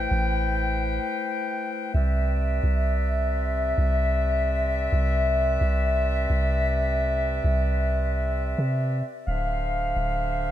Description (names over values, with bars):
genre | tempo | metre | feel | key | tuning
hip hop | 131 BPM | 4/4 | half-time | C major | A4 = 439 Hz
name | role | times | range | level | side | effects
warm woodwind section | sustained chords | 0.0-10.5 s | C3 to G5 | -26 LUFS | left 1 dB | none
soft 808-style bass | bass | 0.0-10.5 s | D1 to C3 | -24 LUFS | equal | none
room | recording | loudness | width
moderate plate reverb, RT60 2.9 s | dreamy mix soaked in reverb | -22 LUFS | side -12 dB against mid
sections
0.0-1.9 A section; 1.9-10.5 B section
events
break 1.0-1.9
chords
0.0 Am9; 1.9 Cmaj7; 9.3 Dm9